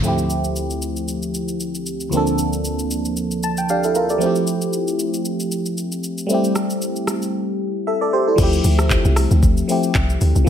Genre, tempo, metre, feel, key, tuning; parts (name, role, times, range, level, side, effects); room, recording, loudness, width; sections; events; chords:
amapiano; 115 BPM; 4/4; swing 55% on 16ths; D minor; A4 = 440 Hz
barking FM electric piano; accompaniment; 0.0-10.5 s; D2 to A5; -19 LUFS; equal; chorus, phaser
smooth R&B drum kit; drums; 0.0-10.5 s; crash cymbal, handclaps, hi-hat, kick drum, rim click, shaker; -23 LUFS; equal
deep log drum bass; bass; 8.4-10.5 s; C2 to D2; -16 LUFS; equal
light reverb; -17 LUFS; side -9 dB against mid
0.0-8.4 A section; 8.4-10.5 B section
FM electric piano fill 3.2-4.2; drums muted 7.3-8.4; drop 8.4-10.5
0.0 Dm11; 2.1 Bbmaj9/D; 4.2 Fmaj9; 6.3 Am7; 8.4 Dm11